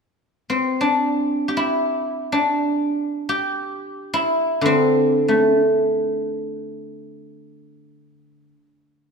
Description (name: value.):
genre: chinese traditional, Chinese solo plucked strings.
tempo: free time.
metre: none.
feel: none.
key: D shang mode.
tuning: A4 = 438 Hz.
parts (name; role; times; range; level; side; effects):
guzheng; solo; 0.5-8.5 s; D3 to G4; -18 LUFS; equal; none.
room: moderate scoring stage reverb, RT60 1.9 s.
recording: minimal, uncompressed stereo recording.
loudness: -18 LUFS.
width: side -5 dB against mid.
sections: 0.0-9.1 A section.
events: none.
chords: none.